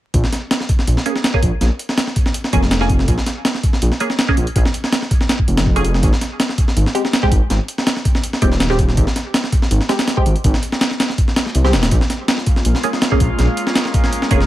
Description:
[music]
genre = drum and bass, jungle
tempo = 163 BPM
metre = 4/4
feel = straight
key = Bb dorian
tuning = A4 = 440 Hz
[part]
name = dark detuned saw bass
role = bass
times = 0.1-14.5 s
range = Eb1 to C2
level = -16 LUFS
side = equal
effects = none
[part]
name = breakbeat sampler-style drum kit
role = drums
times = 0.1-14.5 s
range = hi-hat, kick drum, snare drum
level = -16 LUFS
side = equal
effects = none
[part]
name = filtered dub chord stab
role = stabs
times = 1.1-14.4 s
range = Ab3 to Ab4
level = -23 LUFS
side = right 2 dB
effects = phaser, analog chorus, dub echo
[part]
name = airy breathy pad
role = sustained chords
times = 12.2-14.5 s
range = Ab3 to F4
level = -23 LUFS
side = equal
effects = chorus
[sound]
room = little or no reverb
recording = vinyl crackle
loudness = -14 LUFS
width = side -14 dB against mid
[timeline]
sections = 0.1-14.5 A section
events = none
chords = 0.1 Bb5; 6.0 Ab; 11.9 Bbm7

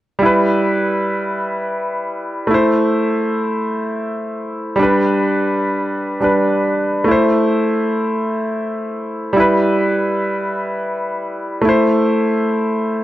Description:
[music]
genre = dancehall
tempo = free time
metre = none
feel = none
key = A minor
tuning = A4 = 440 Hz
[part]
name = clear concert grand piano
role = solo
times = 0.2-13.0 s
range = G3 to C5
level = -15 LUFS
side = equal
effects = none
[sound]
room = moderate plate reverb, RT60 2.8 s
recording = worn, warbling old tape, cassette tape, warbly pitch drift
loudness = -15 LUFS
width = side -14 dB against mid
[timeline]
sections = 0.2-13.0 A section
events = none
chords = 0.2 Em; 2.5 Am; 4.8 G; 7.1 Am; 9.4 Em; 11.7 Am

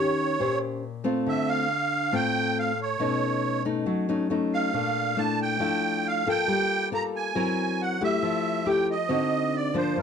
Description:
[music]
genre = bossa nova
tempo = 138 BPM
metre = 4/4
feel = straight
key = unclear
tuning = A4 = 440 Hz
[part]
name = musette accordion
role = melody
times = 0.0-10.0 s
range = C5 to Bb5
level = -26 LUFS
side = right 4 dB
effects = none
[part]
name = nylon-string guitar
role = accompaniment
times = 0.0-10.0 s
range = G2 to C5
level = -26 LUFS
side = left 3 dB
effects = none
[sound]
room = moderate small room reverb, RT60 0.5 s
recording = dark, warm production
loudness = -24 LUFS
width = side -7 dB against mid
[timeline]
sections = 0.0-10.0 A section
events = none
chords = 0.0 Eb13; 1.3 Dm7; 3.0 B9; 4.7 Bbmaj7#11; 6.5 Gm9; 7.3 Gb7#11; 8.2 Fmaj9; 9.1 D7b9

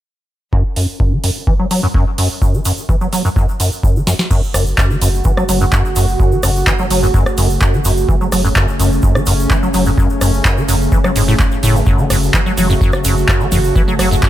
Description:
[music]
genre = acid house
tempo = 127 BPM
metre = 4/4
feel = straight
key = F# minor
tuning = A4 = 440 Hz
[part]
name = acid bass, square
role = riff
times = 0.5-14.3 s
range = F#2 to F#3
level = -16 LUFS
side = equal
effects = lush chorus, ping-pong delay
[part]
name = electronic kick drum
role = drums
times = 0.5-14.3 s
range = none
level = -15 LUFS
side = equal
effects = none
[part]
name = booming analog drum machine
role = drums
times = 0.8-14.3 s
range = crash cymbal, handclaps, hi-hat, rim click, snare drum, toms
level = -20 LUFS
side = right 1 dB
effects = none
[part]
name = egg shaker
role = percussion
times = 2.4-14.3 s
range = none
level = -29 LUFS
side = right 2 dB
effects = none
[part]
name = warbly tape-like pad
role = sustained chords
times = 4.7-14.3 s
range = C#3 to F#4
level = -19 LUFS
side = right 1 dB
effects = chorus, built-in reverb, vintage 12-bit sampler grit, sidechain pumping
[part]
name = saturated sub bass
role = bass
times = 4.5-14.2 s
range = F#1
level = -18 LUFS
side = equal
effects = tube saturation, sidechain pumping
[sound]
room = little or no reverb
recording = none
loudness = -12 LUFS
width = side -13 dB against mid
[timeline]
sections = 0.5-4.3 A section; 4.3-14.3 B section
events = filter sweep on acid bass 0.5-4.3, 4.3-14.3; drum fill 4.1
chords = 0.5 N.C.; 4.3 F#m

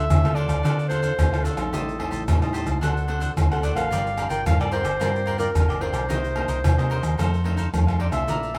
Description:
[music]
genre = samba and choro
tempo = 110 BPM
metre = 4/4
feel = straight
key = D minor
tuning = A4 = 440 Hz
[part]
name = clear clarinet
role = melody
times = 0.0-8.6 s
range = A4 to G5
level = -30 LUFS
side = equal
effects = none
[part]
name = cavaquinho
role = accompaniment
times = 0.0-8.6 s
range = D4 to Bb5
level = -34 LUFS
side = equal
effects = none
[part]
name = nylon-string guitar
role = accompaniment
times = 0.0-8.6 s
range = F2 to Bb4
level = -34 LUFS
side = equal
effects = none
[part]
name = hollow-body short-scale fingered electric bass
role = bass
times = 0.0-8.6 s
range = G1 to D3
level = -28 LUFS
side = equal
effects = none
[part]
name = maracas, surdo, pandeiro and tamborim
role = percussion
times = 0.1-8.6 s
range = none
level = -27 LUFS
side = equal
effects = none
[sound]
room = moderate studio reverb, RT60 0.6 s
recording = none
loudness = -23 LUFS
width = mono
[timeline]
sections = 0.0-8.6 A section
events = none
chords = 0.0 Dm7; 1.7 Am7b5; 2.8 D7; 3.9 Gm7; 6.1 Cm7; 7.2 F7

